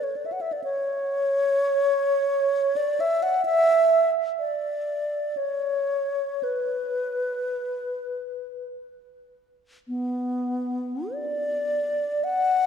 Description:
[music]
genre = classical, free, expressive piece for unaccompanied alto flute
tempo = 45-66 BPM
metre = 3/4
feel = rubato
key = B minor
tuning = A4 = 440 Hz
[part]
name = mellow alto flute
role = solo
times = 0.0-12.7 s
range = B3 to F#5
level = -23 LUFS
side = equal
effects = none
[sound]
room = wet church reverb, RT60 3.0 s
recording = dark, warm production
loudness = -23 LUFS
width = side -7 dB against mid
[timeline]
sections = 0.0-12.7 A section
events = none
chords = none

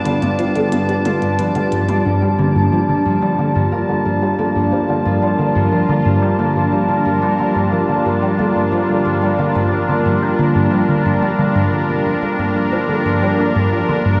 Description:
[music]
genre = ambient, sequencer-driven space music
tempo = 90 BPM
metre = 4/4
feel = straight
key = G minor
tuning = A4 = 439 Hz
[part]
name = sweeping resonant pad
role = sustained chords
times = 0.0-14.2 s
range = G3 to A5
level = -20 LUFS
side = equal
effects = chorus
[part]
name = Celtic harp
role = arpeggios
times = 0.0-14.2 s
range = F3 to F5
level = -23 LUFS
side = equal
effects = analog delay
[part]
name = twinkling granular texture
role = texture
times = 0.0-2.1 s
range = D4 to D5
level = -37 LUFS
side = equal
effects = built-in reverb
[part]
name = resonant blip pluck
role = riff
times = 0.1-14.2 s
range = G2 to D4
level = -21 LUFS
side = equal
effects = phaser, ensemble chorus, analog delay
[part]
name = minimal click drum kit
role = percussion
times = 0.1-2.0 s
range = hi-hat, toms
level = -32 LUFS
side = equal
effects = analog delay
[sound]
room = wet huge ambient reverb, RT60 7.8 s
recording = played on a big sound system in a bare room, large studio reverb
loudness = -16 LUFS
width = mono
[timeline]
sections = 0.0-2.1 A section; 2.1-14.2 B section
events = none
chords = 0.0 G7; 2.1 Gm7

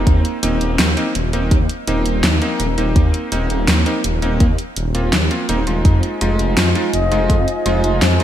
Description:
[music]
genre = synthwave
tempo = 83 BPM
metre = 4/4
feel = straight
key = unclear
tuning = A4 = 445 Hz
[part]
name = bright electric grand piano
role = stabs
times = 0.0-8.2 s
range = Ab3 to F4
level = -21 LUFS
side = right 1 dB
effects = analog chorus, digital delay
[part]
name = wide detuned saw bass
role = bass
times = 0.0-8.2 s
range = Eb1 to F2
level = -18 LUFS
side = equal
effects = chorus
[part]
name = electronic kick drum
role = drums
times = 0.1-7.4 s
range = none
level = -15 LUFS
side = equal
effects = none
[part]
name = pop drum kit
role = drums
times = 0.1-8.2 s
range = hi-hat, snare drum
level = -20 LUFS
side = equal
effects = gated reverb
[part]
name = chorused pulse-width pad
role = sustained chords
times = 5.8-8.2 s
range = F4 to Ab5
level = -24 LUFS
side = right 2 dB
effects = sidechain pumping
[part]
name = soft octave-layered synth lead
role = melody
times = 6.9-8.2 s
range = C5 to Eb5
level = -21 LUFS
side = left 3 dB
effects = chorus, phaser, cassette tape, ping-pong delay
[sound]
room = light reverb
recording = bright 1980s-style digital production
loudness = -14 LUFS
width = side -11 dB against mid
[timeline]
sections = 0.0-8.2 A section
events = none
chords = 0.1 Cm7/Eb; 5.8 Fm7

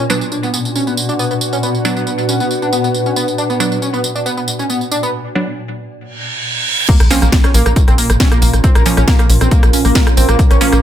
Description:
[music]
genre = driving peak-time techno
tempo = 137 BPM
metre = 4/4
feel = straight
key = unclear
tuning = A4 = 441 Hz
[part]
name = overdriven synth lead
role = riff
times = 0.0-10.7 s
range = Bb3 to D4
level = -20 LUFS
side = equal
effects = distortion, analog chorus, sidechain pumping, digital delay
[part]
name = swarming drone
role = drone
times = 0.0-10.8 s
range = Bb2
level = -24 LUFS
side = equal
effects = built-in reverb, sidechain pumping
[part]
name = warbly tape-like pad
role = texture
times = 0.0-10.8 s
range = Db4 to F#5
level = -21 LUFS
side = left 1 dB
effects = chorus, built-in reverb, sidechain pumping
[part]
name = wavetable chord stab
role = stabs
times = 0.1-10.8 s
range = F3 to D4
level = -19 LUFS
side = right 3 dB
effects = cassette tape, sidechain pumping, digital delay
[part]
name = techno drum kit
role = drums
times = 0.1-10.8 s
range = crash cymbal, hi-hat, rim click, snare drum, tambourine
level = -19 LUFS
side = equal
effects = sidechain pumping on perc, sidechain pumping on hats, sidechain pumping on cymbals
[part]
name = reverse cymbal and sub drop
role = sound effects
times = 6.2-8.6 s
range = none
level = -20 LUFS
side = right 2 dB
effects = none
[part]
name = dusty soul sampler-style drum kit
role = drums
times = 6.9-10.7 s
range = hi-hat, snare drum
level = -32 LUFS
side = equal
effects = none
[part]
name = electronic kick drum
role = drums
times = 6.9-10.5 s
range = none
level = -12 LUFS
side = equal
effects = none
[part]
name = tight sequencer bass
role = bass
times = 7.0-10.8 s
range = Bb1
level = -13 LUFS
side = equal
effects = sidechain pumping
[sound]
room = light reverb, digital ambience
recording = none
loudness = -11 LUFS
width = side -10 dB against mid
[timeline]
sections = 0.0-6.9 A section; 6.9-10.8 B section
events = filter sweep on analog synth lead 0.0-6.9; break 5.1-6.9; reverse cymbal 6.2-6.9; drop 6.9-10.8; impact 6.9-8.6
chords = 0.0 Bm; 6.9 Bbm

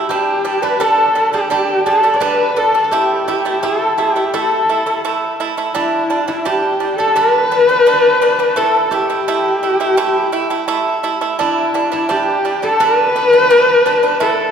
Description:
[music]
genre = mongolian traditional, Mongolian folk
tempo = 85 BPM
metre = 4/4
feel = straight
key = G gong mode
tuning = A4 = 440 Hz
[part]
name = guzheng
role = second line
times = 0.0-14.5 s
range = E4 to D5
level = -19 LUFS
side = equal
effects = none
[part]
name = pipa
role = arpeggios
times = 0.0-14.5 s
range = G3 to E4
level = -18 LUFS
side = right 4 dB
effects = none
[part]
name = rich horsehead fiddle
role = melody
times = 0.1-14.5 s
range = E4 to D5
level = -15 LUFS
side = left 2 dB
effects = none
[sound]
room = wet church reverb, RT60 2.5 s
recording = recorded in a church or concert hall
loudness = -12 LUFS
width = side -7 dB against mid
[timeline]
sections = 0.0-14.5 A section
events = none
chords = 0.1 G5; 2.9 A5; 5.7 G5; 8.6 A5; 11.4 G5

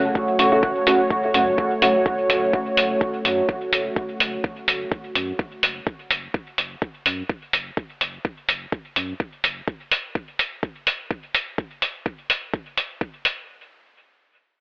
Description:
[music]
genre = dub techno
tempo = 126 BPM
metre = 4/4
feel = swing 54% on 16ths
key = F# minor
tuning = A4 = 440 Hz
[part]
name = dark analog pad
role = sustained chords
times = 0.0-5.8 s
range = A3 to C#5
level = -23 LUFS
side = right 1 dB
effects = chorus, sidechain pumping, cassette tape
[part]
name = deep mellow chord stab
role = stabs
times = 0.0-2.0 s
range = C#3 to F#4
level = -22 LUFS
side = equal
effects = chorus, phaser, sidechain pumping, cassette tape, dub echo
[part]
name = warm sub bass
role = bass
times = 0.0-9.6 s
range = F#1 to F#2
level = -36 LUFS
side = equal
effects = sidechain pumping
[part]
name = electronic kick drum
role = drums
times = 0.2-13.1 s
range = none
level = -25 LUFS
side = equal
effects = cassette tape
[part]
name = electronic hi-hat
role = drums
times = 0.4-13.4 s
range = none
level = -21 LUFS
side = equal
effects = cassette tape
[sound]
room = moderate studio reverb, RT60 0.5 s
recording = home recording on cassette, telephone sound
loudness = -20 LUFS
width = side -23 dB against mid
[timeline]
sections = 0.0-13.5 A section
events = none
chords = 0.0 F#m

